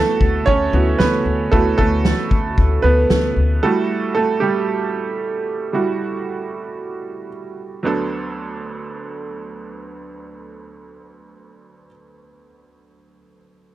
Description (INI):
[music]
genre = piano-driven pop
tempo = 114 BPM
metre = 4/4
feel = straight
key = D major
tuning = A4 = 440 Hz
[part]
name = bright upright piano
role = accompaniment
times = 0.0-13.7 s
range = D2 to C#5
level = -20 LUFS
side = right 3 dB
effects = none
[part]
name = upright bass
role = bass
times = 0.2-3.6 s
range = D2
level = -19 LUFS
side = left 1 dB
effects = none
[part]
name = loose indie drum kit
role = drums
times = 0.2-3.2 s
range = kick drum, snare drum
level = -19 LUFS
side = left 1 dB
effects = none
[sound]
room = light reverb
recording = none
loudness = -16 LUFS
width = side -14 dB against mid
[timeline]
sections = 0.0-7.8 A section; 7.8-12.1 B section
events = upright piano solo 0.0-7.8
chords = 0.0 D6; 3.6 Emadd9; 7.8 D6